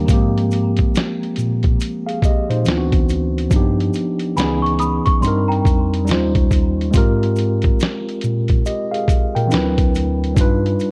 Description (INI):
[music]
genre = lo-fi hip hop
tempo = 70 BPM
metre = 4/4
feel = swing 61% on 16ths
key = unclear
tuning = A4 = 439 Hz
[part]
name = small celesta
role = second line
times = 0.0-6.1 s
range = G5 to Eb6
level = -26 LUFS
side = equal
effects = low-pass filter, tape echo
[part]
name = mellow tine electric piano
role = accompaniment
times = 0.0-10.9 s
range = Eb3 to G5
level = -22 LUFS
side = equal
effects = cassette tape, low-pass filter
[part]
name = mellow tine electric piano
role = bass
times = 0.0-10.7 s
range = Cb2 to Bb2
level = -23 LUFS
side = equal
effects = none
[part]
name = boom bap sampler-style drum kit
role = drums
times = 0.1-10.9 s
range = hi-hat, kick drum, snare drum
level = -20 LUFS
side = equal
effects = vintage 12-bit sampler grit
[part]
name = maracas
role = percussion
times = 0.1-10.9 s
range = none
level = -42 LUFS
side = equal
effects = none
[sound]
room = little or no reverb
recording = cassette tape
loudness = -18 LUFS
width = mono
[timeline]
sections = 0.1-10.9 A section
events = none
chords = 0.1 Abmaj13; 2.7 D13; 3.5 G7b13; 4.4 Dbm9; 5.2 Cm9/G; 6.1 Eb13; 6.9 Abmaj13; 9.5 D13; 10.4 G7b13